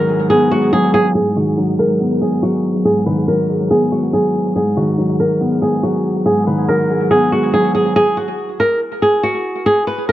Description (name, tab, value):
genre	hip hop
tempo	141 BPM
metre	4/4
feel	half-time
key	G# minor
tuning	A4 = 440 Hz
part	flamenco guitar	melody	0.0-10.1 s	F#4 to B4	-16 LUFS	right 1 dB	low-pass filter, tape echo
part	felt-muted upright piano	accompaniment	0.0-8.0 s	G#2 to B3	-16 LUFS	equal	low-pass filter, tape echo
room	moderate spring reverb, RT60 1.7 s, small room ambience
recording	echo-heavy mix, low-pass filter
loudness	-13 LUFS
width	side -14 dB against mid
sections	0.0-1.2 A section; 1.2-8.0 B section; 8.0-10.1 C section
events	filter sweep 1.2-8.0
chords	0.0 G#m7; 8.0 N.C.